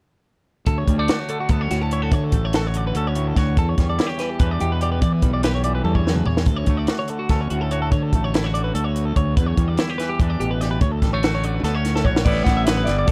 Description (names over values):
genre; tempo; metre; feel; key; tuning
math rock and midwest emo; 290 BPM (eighths); 7/8; straight; D major; A4 = 443 Hz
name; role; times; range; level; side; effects
twangy electric guitar; accompaniment; 0.7-13.1 s; D2 to G4; -29 LUFS; equal; none
twelve-string electric guitar; arpeggios; 0.7-13.1 s; F#4 to E5; -30 LUFS; equal; analog delay
fuzz fingered electric bass; bass; 0.7-13.1 s; G1 to E3; -25 LUFS; equal; overdrive
compact cocktail drum kit; drums; 0.7-13.1 s; crash cymbal, hi-hat, kick drum, snare drum, toms; -23 LUFS; equal; none
electric guitar through a small old amp; melody; 12.0-13.1 s; C#5 to F#5; -27 LUFS; equal; none
room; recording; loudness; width
little or no reverb; dark, warm production; -21 LUFS; mono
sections
0.7-12.3 A section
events
drum fill 5.9-6.5, 11.9-12.3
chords
0.7 Dmaj7; 3.6 Em7; 6.5 Dmaj7; 9.4 Em7; 10.8 Dmaj7; 12.3 A9sus4